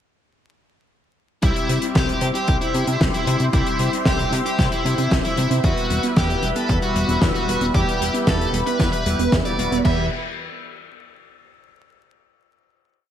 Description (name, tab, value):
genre	italo disco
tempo	114 BPM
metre	4/4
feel	straight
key	E minor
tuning	A4 = 437 Hz
part	smooth overdriven lead guitar	melody	1.4-10.0 s	E4 to E5	-25 LUFS	equal	ping-pong delay
part	lush unison pad	sustained chords	1.7-10.1 s	G3 to C6	-27 LUFS	equal	chorus, phaser
part	warbly dusty pluck	arpeggios	1.4-10.1 s	E3 to C4	-28 LUFS	right 4 dB	wide subtle chorus, ping-pong delay
part	analog synth brass	stabs	1.4-10.0 s	G3 to B4	-28 LUFS	left 3 dB	chorus
part	fat analog bass	bass	1.4-10.1 s	E1 to C3	-23 LUFS	equal	none
part	damped 70s drum kit	drums	1.4-10.0 s	crash cymbal, hi-hat, snare drum	-25 LUFS	left 1 dB	gated reverb
part	electronic kick drum	drums	1.4-10.0 s	none	-23 LUFS	equal	overdrive
room	light reverb, small room ambience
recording	bright 1980s-style digital production, vinyl crackle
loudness	-18 LUFS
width	side -10 dB against mid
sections	1.4-9.8 verse; 9.8-12.0 final chord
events	filter sweep on synth arpeggio sound 1.4-9.8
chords	1.4 C; 5.6 Em